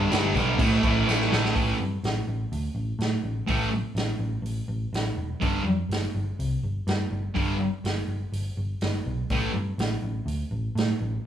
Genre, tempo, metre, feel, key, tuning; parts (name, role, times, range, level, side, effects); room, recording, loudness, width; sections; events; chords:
garage rock duo or trio; 124 BPM; 4/4; straight; A4 = 443 Hz
thick fuzz guitar; riff; 0.0-9.5 s; G2 to A3; -24 LUFS; equal; distortion
hollow-body short-scale picked electric bass; bass; 0.0-11.2 s; E1 to A2; -28 LUFS; equal; tube saturation
vintage drum kit; drums; 0.1-10.9 s; crash cymbal, hi-hat, kick drum, snare drum; -30 LUFS; right 1 dB
tambourine; percussion; 0.1-1.4 s; -40 LUFS; right 5 dB
light reverb; band playing live in one room, studio reverb; -24 LUFS; side -10 dB against mid
0.0-1.6 A section; 1.6-11.3 B section
drum fill 1.1-1.6
0.0 G; 0.6 A5; 5.4 N.C.; 9.3 A5